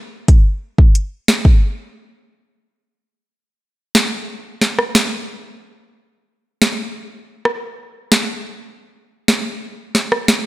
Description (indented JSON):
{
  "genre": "dancehall",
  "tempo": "90 BPM",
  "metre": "4/4",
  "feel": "straight",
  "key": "none",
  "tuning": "none",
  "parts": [
    { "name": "afro-pop drum kit", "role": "drums", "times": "0.3-10.4 s", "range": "hi-hat, kick drum, rim click, snare drum", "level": "-13 LUFS", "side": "equal", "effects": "none" }
  ],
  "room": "light reverb",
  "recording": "none",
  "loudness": "-14 LUFS",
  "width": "side -18 dB against mid",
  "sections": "0.0-3.0 A section; 3.0-10.5 B section",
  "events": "break 1.6-3.0",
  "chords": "none"
}